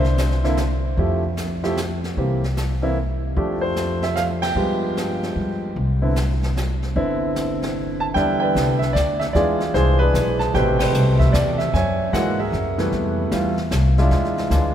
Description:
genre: jazz piano trio.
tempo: 151 BPM.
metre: 3/4.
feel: swing 65% on 8ths.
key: C major.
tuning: A4 = 439 Hz.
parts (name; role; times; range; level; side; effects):
warm baby grand piano; melody; 0.0-14.7 s; B2 to A5; -21 LUFS; right 1 dB; none.
upright bass; bass; 0.0-14.7 s; G1 to G#2; -21 LUFS; equal; none.
jazz brush drum kit; drums; 0.0-14.7 s; brushed snare drum, hi-hat, kick drum, ride cymbal, snare drum; -29 LUFS; left 1 dB; none.
room: moderate cathedral reverb, RT60 5.3 s.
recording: recorded in a church or concert hall.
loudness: -18 LUFS.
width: side -10 dB against mid.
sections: 0.0-8.2 A section; 8.2-14.7 B section.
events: band accent 4.4, 10.7.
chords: 0.0 N.C.; 1.0 Fmaj9; 2.2 C7; 3.4 F69; 4.6 G7b9; 5.8 Cmaj9; 8.2 Em7; 9.3 E7b9; 10.5 Am9; 11.7 F#9; 12.9 Fmaj9; 14.1 E7b9.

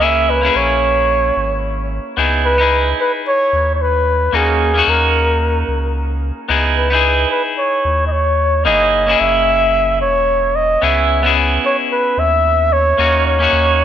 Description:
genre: sunset chillout.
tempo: 111 BPM.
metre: 4/4.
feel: swing 58% on 16ths.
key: C# dorian.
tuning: A4 = 440 Hz.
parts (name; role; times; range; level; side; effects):
mellow flugelhorn; melody; 0.0-13.8 s; G#4 to E5; -15 LUFS; equal; ping-pong delay.
clean electric guitar; accompaniment; 0.0-13.8 s; A#3 to G#4; -17 LUFS; left 1 dB; auto-pan.
warm sub bass; bass; 0.0-13.8 s; E1 to D#2; -19 LUFS; equal; none.
room: light reverb, small room ambience.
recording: none.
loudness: -12 LUFS.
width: side -9 dB against mid.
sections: 0.0-2.2 A section; 2.2-13.8 B section.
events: none.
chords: 0.0 F#9 (rootless); 2.2 C#m7; 4.3 D#m7; 6.5 C#m7; 8.7 F#13; 10.8 C#m7; 13.0 D#m7.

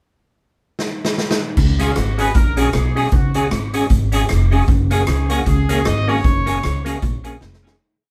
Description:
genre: ska.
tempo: 154 BPM.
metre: 4/4.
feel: swing 58% on 8ths.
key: Db mixolydian.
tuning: A4 = 440 Hz.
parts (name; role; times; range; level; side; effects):
street-band drum kit; drums; 0.8-7.8 s; crash cymbal, hi-hat, kick drum, rim click, snare drum; -22 LUFS; equal; none.
clean electric guitar; riff; 1.6-7.6 s; F2 to Db3; -31 LUFS; equal; none.
upright bass; bass; 1.6-7.7 s; F1 to Db2; -21 LUFS; equal; none.
bright horn section; melody; 1.8-7.2 s; F4 to Eb5; -28 LUFS; equal; none.
semi-hollow electric guitar; accompaniment; 1.8-7.7 s; Bb3 to Ab4; -25 LUFS; equal; tape echo.
percussive tonewheel organ; stabs; 1.8-7.8 s; Ab3 to Ab4; -26 LUFS; equal; overdrive, chorus vibrato, fast rotary speaker.
room: moderate studio ambience, RT60 0.5 s.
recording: band playing live in one room.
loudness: -17 LUFS.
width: mono.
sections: 0.0-1.6 pickup bar; 1.6-7.8 head.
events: drum fill 0.8-1.6, 7.4-7.8; fade-out 6.2-7.8.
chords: 0.0 N.C.; 1.6 Dbsus4; 4.7 Gbadd9.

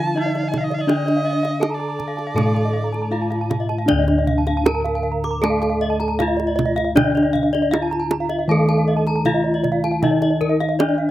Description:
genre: Balinese gamelan.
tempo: 78 BPM.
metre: 4/4.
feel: straight.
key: D pelog.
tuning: A4 = 440 Hz.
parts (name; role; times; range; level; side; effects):
gamelan-type bronze metallophone; melody; 0.0-11.1 s; D4 to Bb4-20c; -22 LUFS; equal; slapback echo.
clear erhu; second line; 0.0-3.6 s; D5 to A5-28c; -28 LUFS; right 3 dB; slapback echo.
gamelan-type bronze metallophone; accompaniment; 0.0-11.1 s; D3 to A3-30c; -28 LUFS; equal; none.
gamelan-type bronze metallophone; arpeggios; 0.0-10.9 s; Bb4-20c to D6; -26 LUFS; left 5 dB; slapback echo.
gamelan-type bossed gongs; bass; 0.0-10.9 s; D2 to Eb4+20c; -23 LUFS; left 1 dB; none.
kendang; percussion; 0.0-11.0 s; none; -24 LUFS; right 4 dB; none.
gamelan-type bronze metallophone; arpeggios; 0.1-11.1 s; D5 to Bb5-20c; -27 LUFS; right 5 dB; slapback echo.
room: little or no reverb.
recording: recorded outdoors, with no room sound.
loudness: -17 LUFS.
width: side -14 dB against mid.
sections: 0.0-3.9 A section; 3.9-11.1 B section.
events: none.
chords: none.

